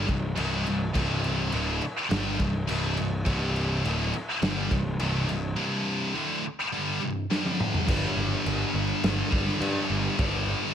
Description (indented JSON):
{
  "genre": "hard rock",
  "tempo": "104 BPM",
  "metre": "4/4",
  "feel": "straight",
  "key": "unclear",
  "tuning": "A4 = 442 Hz",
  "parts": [
    { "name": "scooped high-gain guitar", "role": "riff", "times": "0.0-10.7 s", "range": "C2 to G3", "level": "-27 LUFS", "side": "equal", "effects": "distortion" },
    { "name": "fuzz picked electric bass", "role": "bass", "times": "0.0-10.5 s", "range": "C1 to G2", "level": "-29 LUFS", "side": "equal", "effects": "overdrive" },
    { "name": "raw garage drum kit", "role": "drums", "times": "0.1-10.3 s", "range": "crash cymbal, kick drum, snare drum, toms", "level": "-31 LUFS", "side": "equal", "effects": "none" }
  ],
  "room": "light reverb",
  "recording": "none",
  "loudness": "-25 LUFS",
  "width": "side -9 dB against mid",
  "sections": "0.0-7.9 A section; 7.9-10.7 B section",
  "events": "drum fill 7.3-7.9",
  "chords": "0.0 C5; 7.3 G5",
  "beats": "0.38 | 0.95 1.53 2.11 2.69 | 3.27 3.84 4.42 5.00 | 5.58 6.15 6.73 7.30 | 7.88 8.46 9.03 9.61 | 10.18"
}